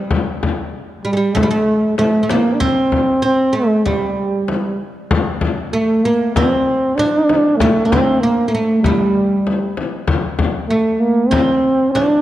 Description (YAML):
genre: Arabic maqam ensemble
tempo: 96 BPM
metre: 4/4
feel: straight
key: G maqam bayati, D maqam hijaz from 5.1 s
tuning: A4 = 445 Hz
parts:
  - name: frame drum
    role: percussion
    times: 0.1-12.1 s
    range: none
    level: -20 LUFS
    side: left 4 dB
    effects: none
  - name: oud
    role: second line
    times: 1.0-12.2 s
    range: G3 to D4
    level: -20 LUFS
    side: right 1 dB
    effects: none
  - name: breathy trombone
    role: melody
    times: 1.1-12.2 s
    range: G3 to D4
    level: -15 LUFS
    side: right 1 dB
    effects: none
room: light reverb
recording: dark, warm production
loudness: -14 LUFS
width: side -13 dB against mid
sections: 0.0-5.1 A section; 5.1-12.2 B section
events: none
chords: none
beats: | 0.12 0.74 1.36 1.99 | 2.61 3.23 3.85 4.48 | 5.10 5.72 6.34 6.96 | 7.59 8.21 8.83 9.45 | 10.07 10.70 11.32 11.94